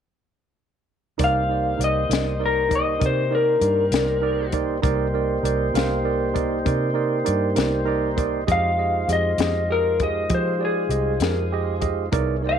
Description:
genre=slow blues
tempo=66 BPM (dotted quarters)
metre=12/8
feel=straight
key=C minor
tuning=A4 = 440 Hz
part: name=electric slide guitar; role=melody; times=1.2-12.6 s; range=Ab4 to F5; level=-22 LUFS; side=left 4 dB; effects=none
part: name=overdriven tine electric piano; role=accompaniment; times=1.2-12.6 s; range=Eb4 to Bb5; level=-26 LUFS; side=right 12 dB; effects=none
part: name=mellow tonewheel organ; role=sustained chords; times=1.2-12.6 s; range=Ab3 to Db5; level=-28 LUFS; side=equal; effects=slow rotary speaker
part: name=vintage muted fingered electric bass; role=bass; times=1.2-12.6 s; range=C2 to F3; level=-26 LUFS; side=equal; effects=none
part: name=compact cocktail drum kit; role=drums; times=1.2-12.3 s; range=hi-hat, kick drum, snare drum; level=-25 LUFS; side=left 4 dB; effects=none
room=moderate spring reverb, RT60 2.4 s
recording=1960s-style stereo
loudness=-19 LUFS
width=side -8 dB against mid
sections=1.2-12.6 A section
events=tine electric piano fill 7.6-8.5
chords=1.2 Cm7; 8.5 Fm7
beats=| 1.20 2.11 3.02 3.93 | 4.84 5.75 6.66 7.57 | 8.48 9.39 10.30 11.21 | 12.12

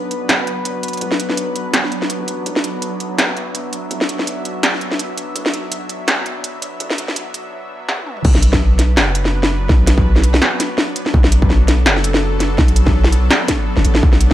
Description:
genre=half-time drum and bass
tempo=166 BPM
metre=4/4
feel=swing 56% on 16ths, half-time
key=B minor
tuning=A4 = 439 Hz
part: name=bowed-like drone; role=sustained chords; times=0.0-14.3 s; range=F#3 to E5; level=-24 LUFS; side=left 1 dB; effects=built-in reverb, sidechain pumping
part: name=long sustained 808-style bass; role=bass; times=0.0-14.3 s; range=F#1 to B1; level=-16 LUFS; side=equal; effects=high-pass filter
part: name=industrial drum kit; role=drums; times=0.1-14.3 s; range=crash cymbal, hi-hat, snare drum, toms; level=-17 LUFS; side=equal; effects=small room ambience
part: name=electronic kick drum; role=drums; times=8.2-14.3 s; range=none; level=-15 LUFS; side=equal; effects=distortion, small room ambience
room=light reverb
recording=high-pass filter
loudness=-14 LUFS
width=side -13 dB against mid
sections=0.0-8.2 A section; 8.2-14.3 B section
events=build-up 0.0-8.2; filter sweep on synth drone 0.0-8.2; drum fill 7.9-8.2; drop 8.2-14.3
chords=0.0 Bm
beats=0.29 0.66 | 1.02 1.38 1.74 2.10 | 2.46 2.83 3.19 3.55 | 3.91 4.27 4.63 4.99 | 5.36 5.72 6.08 6.44 | 6.80 7.16 7.52 7.89 | 8.25 8.61 8.97 9.33 | 9.69 10.05 10.42 10.78 | 11.14 11.50 11.86 12.22 | 12.58 12.95 13.31 13.67 | 14.03

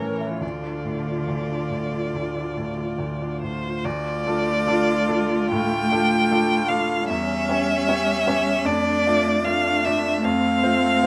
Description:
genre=classical, slow romantic movement for piano quartet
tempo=68-79 BPM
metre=4/4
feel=rubato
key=D minor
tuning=A4 = 441 Hz
part: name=rich violin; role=melody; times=0.0-11.1 s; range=C5 to G5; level=-26 LUFS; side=equal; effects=none
part: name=warm cello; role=second line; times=0.0-11.1 s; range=D3 to A3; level=-31 LUFS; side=equal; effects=none
part: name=clear baby grand piano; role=accompaniment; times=0.0-11.1 s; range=D2 to D5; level=-28 LUFS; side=equal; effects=none
part: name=rich viola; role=accompaniment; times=0.0-11.1 s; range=C4 to Bb4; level=-31 LUFS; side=equal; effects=none
room=light reverb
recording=close, detailed microphones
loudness=-22 LUFS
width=mono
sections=0.0-3.8 A section; 3.8-11.1 B section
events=none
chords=0.4 Dm; 7.1 C#dim/E; 8.7 Dm/F; 10.2 F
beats=| 0.42 1.29 2.15 2.99 | 3.85 4.65 5.50 6.29 | 7.09 7.88 8.65 9.45 | 10.24 11.01

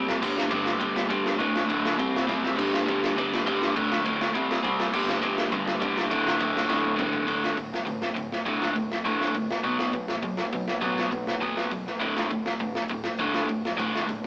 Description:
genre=punk rock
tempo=204 BPM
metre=4/4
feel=straight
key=D mixolydian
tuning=A4 = 440 Hz
part: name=overdriven electric guitar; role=riff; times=0.0-14.2 s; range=D2 to C4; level=-26 LUFS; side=equal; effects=none
part: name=growling picked electric bass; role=bass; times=0.0-14.3 s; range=D1 to C2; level=-37 LUFS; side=equal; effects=overdrive
part: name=raw garage drum kit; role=drums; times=0.1-14.3 s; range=crash cymbal, hi-hat, kick drum, ride cymbal, snare drum, toms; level=-29 LUFS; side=equal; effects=none
room=moderate stone room reverb, RT60 1.4 s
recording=rough rehearsal-room recording, warm saturation, AM radio sound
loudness=-24 LUFS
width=side -25 dB against mid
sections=0.0-7.3 A section; 7.3-14.3 B section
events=drum fill 2.3, 6.7-7.3, 11.9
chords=0.2 G5; 1.4 D5; 2.0 C5; 2.6 G5; 3.8 D5; 4.3 C5; 4.9 G5; 6.1 D5; 9.5 B5; 12.0 D5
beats=| 0.23 0.52 0.81 1.11 | 1.40 1.70 1.99 2.28 | 2.58 2.87 3.17 3.46 | 3.75 4.05 4.34 4.63 | 4.93 5.22 5.52 5.81 | 6.11 6.40 6.69 6.99 | 7.28 7.58 7.87 8.17 | 8.46 8.76 9.06 9.35 | 9.65 9.94 10.24 10.53 | 10.83 11.13 11.42 11.72 | 12.01 12.31 12.60 12.90 | 13.20 13.49 13.79 14.08

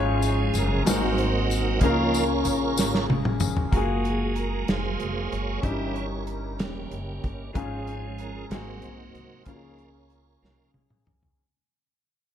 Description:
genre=slow gospel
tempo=63 BPM (dotted quarters)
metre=6/8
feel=straight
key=Db major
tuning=A4 = 440 Hz
part: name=clear concert grand piano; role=accompaniment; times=0.0-11.4 s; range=G2 to Db5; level=-28 LUFS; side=left 3 dB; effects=analog chorus
part: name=tonewheel organ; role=sustained chords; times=0.0-10.7 s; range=Fb3 to F5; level=-30 LUFS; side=right 5 dB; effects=chorus vibrato, stopped rotary speaker
part: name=upright bass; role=bass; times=0.0-11.4 s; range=Fb1 to Db2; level=-30 LUFS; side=equal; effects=none
part: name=warm soul drum kit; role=drums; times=0.2-11.4 s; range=hi-hat, kick drum, snare drum, toms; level=-26 LUFS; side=equal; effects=gated reverb
part: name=tambourine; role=percussion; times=0.2-3.7 s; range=none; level=-34 LUFS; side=left 10 dB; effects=none
room=light reverb, small room ambience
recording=bright 1980s-style digital production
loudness=-23 LUFS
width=side -9 dB against mid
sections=0.0-3.7 A section; 3.7-11.4 B section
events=tonewheel organ solo 0.0-3.7, 3.7-11.4; drum fill 2.8-3.7, 10.4-11.4; fade-out 3.7-11.4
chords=0.0 Db/Ab; 0.9 Ab9; 1.8 Db6; 3.7 Gbmaj9; 5.6 Eb7b9/G; 7.6 Db/Ab; 8.5 Ab9; 9.5 Db6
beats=0.86 | 1.81 2.77 | 3.73 4.68 | 5.64 6.60 | 7.55 8.51 | 9.47 10.43

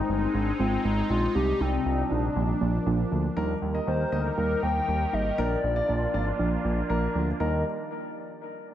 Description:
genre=synth-pop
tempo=119 BPM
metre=4/4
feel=straight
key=Eb major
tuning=A4 = 440 Hz
part: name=hollow clarinet-like synth lead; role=melody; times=0.0-7.6 s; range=C4 to G5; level=-30 LUFS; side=left 3 dB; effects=chorus, low-pass filter, dub echo
part: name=sweeping resonant pad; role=sustained chords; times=0.0-7.6 s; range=C3 to Bb4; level=-33 LUFS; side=equal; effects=chorus, low-pass filter
part: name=muted felt-like synth keys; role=accompaniment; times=0.1-7.6 s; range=F3 to F4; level=-30 LUFS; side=right 3 dB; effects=chorus, low-pass filter, dub echo
part: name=fat analog bass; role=bass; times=0.1-7.6 s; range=G1 to Eb2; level=-29 LUFS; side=equal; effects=none
part: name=clear grand piano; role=second line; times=3.4-7.6 s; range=Bb4 to Eb5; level=-34 LUFS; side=left 3 dB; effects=dub echo
room=wet spring reverb, RT60 2.3 s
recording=echo-heavy mix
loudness=-24 LUFS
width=side -11 dB against mid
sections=0.0-3.4 A section; 3.4-7.4 B section; 7.4-8.7 C section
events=filter sweep 3.4-7.4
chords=0.0 Ab; 1.4 Cmadd9; 2.4 Bb; 3.4 Eb; 5.4 Bb; 7.4 Eb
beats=0.34 0.85 | 1.35 1.85 2.36 2.86 | 3.37 3.87 4.38 4.88 | 5.38 5.89 6.39 6.90 | 7.40

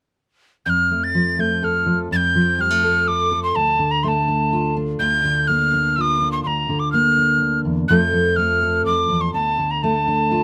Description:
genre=folk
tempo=124 BPM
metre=3/4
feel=straight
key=unclear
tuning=A4 = 443 Hz
part: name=breathy mellow mid whistle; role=melody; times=0.7-10.4 s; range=A5 to A6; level=-20 LUFS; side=equal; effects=none
part: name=fingerpicked steel-string acoustic guitar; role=accompaniment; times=0.7-10.4 s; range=D2 to A4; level=-23 LUFS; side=equal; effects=none
room=light reverb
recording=close, detailed microphones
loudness=-19 LUFS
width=mono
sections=0.7-2.1 A section; 2.1-10.4 B section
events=none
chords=0.7 F; 3.5 Dm; 5.0 Bb/D; 7.9 F; 9.3 D5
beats=| 0.65 1.13 1.61 | 2.10 2.58 3.06 | 3.54 4.03 4.51 | 4.99 5.47 5.96 | 6.44 6.92 7.40 | 7.88 8.37 8.85 | 9.33 9.82 10.30

